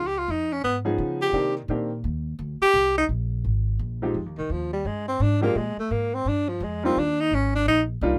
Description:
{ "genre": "jazz, small-group swing and bop", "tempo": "170 BPM", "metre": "4/4", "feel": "swing 63% on 8ths", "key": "C minor", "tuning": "A4 = 440 Hz", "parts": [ { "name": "breathy tenor saxophone", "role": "melody", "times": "0.0-7.8 s", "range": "Eb3 to G4", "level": "-25 LUFS", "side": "equal", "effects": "none" }, { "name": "upright bass", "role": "bass", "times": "0.0-8.2 s", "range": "Ab1 to Db3", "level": "-30 LUFS", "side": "equal", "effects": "none" }, { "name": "clear baby grand piano", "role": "accompaniment", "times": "0.8-1.9, 4.0-8.2 s", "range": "Eb3 to Ab4", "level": "-28 LUFS", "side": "equal", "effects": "none" } ], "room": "moderate booth ambience, RT60 0.2 s", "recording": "none", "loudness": "-25 LUFS", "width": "mono", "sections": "0.0-4.2 A section; 4.2-8.2 B section", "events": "none", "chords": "0.0 Db9; 1.3 Cm7; 4.2 Fm9; 5.6 Bb5; 7.0 Ebmaj9", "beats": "0.28 0.63 0.99 | 1.34 1.69 2.04 2.39 | 2.74 3.10 3.45 3.80 | 4.15 4.50 4.86 5.21 | 5.56 5.91 6.27 6.62 | 6.97 7.32 7.68 8.03" }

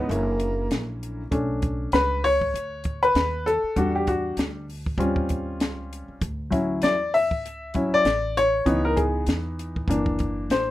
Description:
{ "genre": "hip hop, jazz-hop", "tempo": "98 BPM", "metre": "4/4", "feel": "swing 58% on 16ths", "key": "unclear", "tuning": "A4 = 440 Hz", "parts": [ { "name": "breathy tenor saxophone", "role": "melody", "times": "0.0-1.0 s", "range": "A#3 to B3", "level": "-28 LUFS", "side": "right 2 dB", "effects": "none" }, { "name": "warm upright piano", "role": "accompaniment", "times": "0.0-10.7 s", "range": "D3 to E5", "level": "-23 LUFS", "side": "left 2 dB", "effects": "none" }, { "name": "upright bass", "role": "bass", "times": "0.0-10.7 s", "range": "F#1 to E2", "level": "-30 LUFS", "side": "equal", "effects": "none" }, { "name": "compact cocktail drum kit", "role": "drums", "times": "0.1-10.7 s", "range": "hi-hat, kick drum, snare drum", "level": "-28 LUFS", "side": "equal", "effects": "none" } ], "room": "little or no reverb", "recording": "rough home demo mix", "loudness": "-22 LUFS", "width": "side -15 dB against mid", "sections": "0.0-1.3 A section; 1.3-10.7 B section", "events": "kick muted 0.1-1.3; upright piano solo 1.3-10.7", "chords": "0.1 F#7b13; 1.3 Bm9; 3.8 Em9; 5.0 D#13; 6.2 Dmaj9; 8.7 C#m7; 9.9 F#7alt", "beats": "0.09 0.70 | 1.32 1.93 2.54 3.15 | 3.77 4.38 4.99 5.60 | 6.21 6.83 7.44 8.05 | 8.66 9.28 9.89 10.50" }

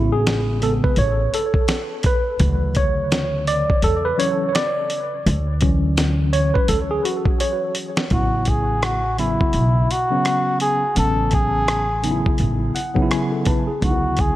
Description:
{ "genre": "hip hop, jazz-hop", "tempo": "84 BPM", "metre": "4/4", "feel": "swing 59% on 16ths", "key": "A major", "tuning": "A4 = 441 Hz", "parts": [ { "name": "tine electric piano", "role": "accompaniment", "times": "0.0-14.4 s", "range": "C#3 to A5", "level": "-21 LUFS", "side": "equal", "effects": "overdrive, fast stereo tremolo, analog delay" }, { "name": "upright bass", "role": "bass", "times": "0.0-14.4 s", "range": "A1 to E2", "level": "-21 LUFS", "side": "equal", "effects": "none" }, { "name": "dusty soul sampler-style drum kit", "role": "drums", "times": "0.3-14.4 s", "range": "hi-hat, kick drum, rim click, snare drum", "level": "-21 LUFS", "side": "equal", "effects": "none" }, { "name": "trumpet with cup mute", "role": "melody", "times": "8.1-14.4 s", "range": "E4 to A4", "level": "-22 LUFS", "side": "equal", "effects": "analog delay" } ], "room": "light reverb", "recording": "echo-heavy mix", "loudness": "-17 LUFS", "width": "side -14 dB against mid", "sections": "0.0-8.1 A section; 8.1-14.4 B section", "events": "tine electric piano solo 0.0-8.1; drum fill 7.4-8.1; tine electric piano fill 12.4-13.8", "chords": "0.0 Amaj9; 2.4 Dmaj9; 8.1 Amaj9; 13.8 Dmaj9", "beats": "0.26 0.97 1.69 | 2.40 3.12 3.83 4.54 | 5.26 5.97 6.69 7.40 | 8.12 8.83 9.54 10.26 | 10.97 11.69 12.40 13.12 | 13.83" }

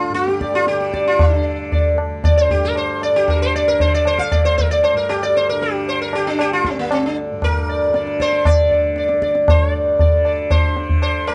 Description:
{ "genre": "indian classical, Hindustani", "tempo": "116 BPM", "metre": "4/4", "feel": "straight", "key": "D raga malkauns", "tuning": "A4 = 440 Hz", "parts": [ { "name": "sitar", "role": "melody", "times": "0.0-11.3 s", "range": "Bb3 to F5", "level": "-19 LUFS", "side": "equal", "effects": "none" }, { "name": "tanpura", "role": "drone", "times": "0.0-11.3 s", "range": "D2 to D3", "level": "-30 LUFS", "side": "equal", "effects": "none" }, { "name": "tabla", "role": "percussion", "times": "0.1-11.3 s", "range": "none", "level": "-21 LUFS", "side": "equal", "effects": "none" } ], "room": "light reverb", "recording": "dark, warm production, nothing above 11.0 kHz", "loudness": "-17 LUFS", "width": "mono", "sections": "0.0-9.5 A section; 9.5-11.3 B section", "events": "none", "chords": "none", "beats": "0.15 0.68 | 1.20 1.72 2.24 2.76 | 3.28 3.80 4.32 4.84 | 5.36 5.87 6.39 6.91 | 7.42 7.94 8.46 8.97 | 9.48 10.00 10.51 11.02" }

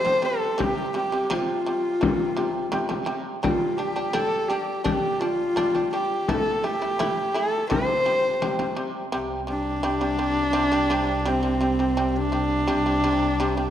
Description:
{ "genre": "mongolian traditional, Mongolian folk", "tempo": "84 BPM", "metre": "4/4", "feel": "straight", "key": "C zhi mode", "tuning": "A4 = 440 Hz", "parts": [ { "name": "rich horsehead fiddle", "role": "melody", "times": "0.0-13.7 s", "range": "C4 to C5", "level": "-24 LUFS", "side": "equal", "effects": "none" }, { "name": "shamisen", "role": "arpeggios", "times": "0.0-13.7 s", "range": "C3 to E4", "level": "-28 LUFS", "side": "right 1 dB", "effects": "none" }, { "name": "frame drum", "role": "percussion", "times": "0.1-8.8 s", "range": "none", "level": "-29 LUFS", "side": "left 3 dB", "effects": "none" }, { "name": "rich double bass", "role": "drone", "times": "9.1-13.7 s", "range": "C2", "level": "-29 LUFS", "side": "equal", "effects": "none" } ], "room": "moderate concert hall reverb, RT60 2.4 s", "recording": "dark, warm production", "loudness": "-22 LUFS", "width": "side -10 dB against mid", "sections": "0.0-9.1 A section; 9.1-13.7 B section", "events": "none", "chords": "0.0 C5; 3.4 G5; 6.3 A5; 7.7 C5", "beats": "| 0.59 1.30 2.02 2.73 | 3.44 4.15 4.86 5.57 | 6.28 6.99 7.70 8.41 | 9.12 9.83 10.54 11.25 | 11.96 12.68 13.38" }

